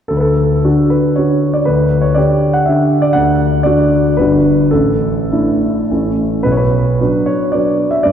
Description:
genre	classical, romantic triple-time dance for piano with dotted rhythms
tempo	97-130 BPM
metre	3/4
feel	rubato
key	D major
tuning	A4 = 440 Hz
part	warm grand piano	solo	0.1-8.1 s	G1 to F#5	-11 LUFS	equal	none
room	wet church reverb, RT60 2.5 s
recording	dark, warm production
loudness	-11 LUFS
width	side -8 dB against mid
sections	0.1-8.1 A section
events	none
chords	0.1 D; 1.7 G5/D; 3.2 D; 4.2 Gmaj7; 4.7 Asus4; 5.9 A; 6.4 Bm

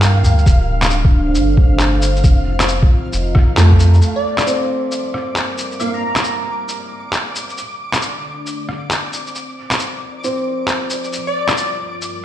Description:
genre	future garage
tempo	135 BPM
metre	4/4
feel	swing 63% on 16ths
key	G minor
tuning	A4 = 440 Hz
part	clear upright piano	accompaniment	0.0-0.6, 3.6-11.3 s	A3 to C4	-23 LUFS	right 2 dB	sidechain pumping, low-pass filter, tape echo
part	dark analog pad	sustained chords	0.0-12.2 s	G3 to Bb5	-26 LUFS	equal	chorus, phaser, sidechain pumping
part	warm sub bass	bass	0.0-4.0 s	D1 to G2	-14 LUFS	equal	sidechain pumping
part	electronic handclaps, shaker and rim click	drums	0.0-12.1 s	none	-20 LUFS	equal	none
part	flickering grainy texture	texture	0.0-12.2 s	F5 to D6	-28 LUFS	equal	built-in reverb
part	electronic kick drum	drums	0.5-3.8 s	none	-11 LUFS	equal	none
part	plucky unison lead	melody	4.2-6.5, 11.3-11.7 s	D5 to Bb5	-22 LUFS	left 1 dB	wide subtle chorus, cassette tape, tape echo
room	light reverb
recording	played on a big sound system in a bare room, stone room reverb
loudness	-14 LUFS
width	side -12 dB against mid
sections	0.0-4.0 A section; 4.0-12.2 B section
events	band accent 3.6; filter sweep on analog synth pad 4.0-12.2; filter sweep on upright piano 4.0-12.2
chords	0.5 D7sus4; 2.2 F7sus4; 4.0 Gm7; 7.6 D7sus4; 9.4 F7sus4; 11.1 Gm7

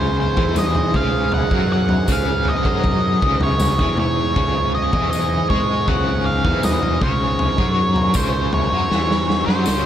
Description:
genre	psychedelic rock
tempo	79 BPM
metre	4/4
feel	straight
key	unclear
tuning	A4 = 439 Hz
part	octave-fuzz lead guitar	melody	0.0-9.9 s	C5 to Gb5	-22 LUFS	equal	distortion, diffuse ambient delay
part	combo organ	sustained chords	0.0-9.9 s	Ab3 to Bb4	-29 LUFS	right 8 dB	none
part	crunchy overdriven guitar	riff	0.0-9.9 s	Db3 to Ab3	-24 LUFS	left 2 dB	tremolo
part	fuzz fingered electric bass	bass	0.0-9.9 s	Db2 to Ab2	-22 LUFS	equal	overdrive
part	pedal harmonium	drone	0.0-9.9 s	Ab2	-30 LUFS	left 1 dB	stereo widening
part	raw garage drum kit	drums	0.4-9.8 s	kick drum, snare drum, toms	-21 LUFS	equal	none
part	tambourine	percussion	0.6-9.8 s	none	-35 LUFS	left 7 dB	none
room	moderate lush hall reverb, RT60 3.0 s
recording	dreamy mix soaked in reverb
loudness	-16 LUFS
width	side -10 dB against mid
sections	0.0-9.9 A section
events	drum fill 8.9-9.9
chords	0.0 Db5

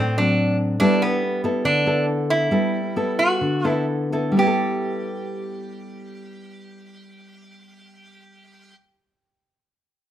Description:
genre	bossa nova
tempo	122-143 BPM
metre	4/4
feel	straight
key	G major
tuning	A4 = 439 Hz
part	lap resonator guitar	melody	0.0-8.8 s	B3 to G4	-22 LUFS	right 1 dB	none
part	nylon-string guitar	accompaniment	0.0-8.9 s	A2 to A4	-22 LUFS	left 1 dB	none
room	wet studio reverb, RT60 0.6 s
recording	rough home demo mix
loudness	-19 LUFS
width	side -11 dB against mid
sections	0.0-4.4 A section; 4.4-8.3 B section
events	slowing down 0.8-4.4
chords	0.0 D7; 0.8 G69

